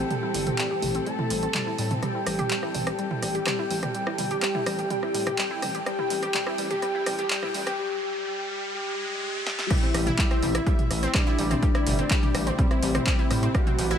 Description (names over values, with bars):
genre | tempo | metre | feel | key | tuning
melodic techno | 125 BPM | 4/4 | straight | A minor | A4 = 440 Hz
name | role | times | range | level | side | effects
soft octave-layered synth lead | melody | 0.0-14.0 s | C4 to A4 | -30 LUFS | left 2 dB | chorus, phaser, sidechain pumping, ping-pong delay
airy dreamy lead | second line | 0.0-14.0 s | C5 to A5 | -35 LUFS | equal | chorus, sidechain pumping, dub echo
dark studio string section | sustained chords | 0.0-14.0 s | C3 to A4 | -36 LUFS | left 1 dB | sidechain pumping, low-pass filter
wide unison pluck | arpeggios | 0.0-14.0 s | G3 to G5 | -32 LUFS | right 1 dB | sidechain pumping, dub echo
gritty driven synth bass | bass | 0.0-13.9 s | G1 to A2 | -30 LUFS | equal | sidechain pumping
punchy analog drum machine | drums | 0.1-14.0 s | crash cymbal, handclaps, hi-hat, rim click, snare drum, toms | -29 LUFS | right 1 dB | none
riser | sound effects | 4.0-9.7 s | none | -36 LUFS | equal | none
electronic kick drum | drums | 9.7-13.6 s | none | -24 LUFS | equal | none
room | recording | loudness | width
light reverb, digital ambience | high-pass filter | -23 LUFS | side -8 dB against mid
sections
0.0-9.7 A section; 9.7-14.0 B section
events
build-up 0.0-9.7; filter sweep on synth pluck 0.0-9.7; filter sweep on soft synth lead 0.0-9.7; filter sweep on digital synth lead 0.0-9.7; filter sweep on string section 0.0-9.7; filter sweep 0.0-9.7; riser 4.0-9.7; break 7.8-9.7; drum fill 9.5; drop 9.7-14.0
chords
0.0 Am7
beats
| 0.11 0.59 1.07 1.55 | 2.03 2.51 2.99 3.47 | 3.95 4.43 4.91 5.39 | 5.87 6.35 6.83 7.31 | 7.79 8.27 8.75 9.23 | 9.71 10.19 10.67 11.15 | 11.63 12.11 12.59 13.07 | 13.55